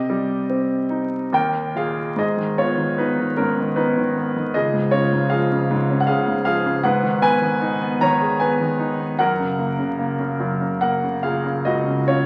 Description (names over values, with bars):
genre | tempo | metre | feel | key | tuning
classical, lyrical solo piano | 70-80 BPM | 3/4 | rubato | G# dorian | A4 = 440 Hz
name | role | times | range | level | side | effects
clear grand piano | solo | 0.0-12.3 s | C#2 to A#5 | -21 LUFS | equal | none
room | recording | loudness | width
wet scoring stage reverb, RT60 1.5 s | very old 78 rpm record, vinyl crackle | -21 LUFS | mono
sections
0.0-2.2 A section; 2.2-12.3 B section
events
none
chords
0.0 Cm; 1.3 Eb; 2.2 G#m; 4.6 C#; 6.9 G#m; 9.2 F#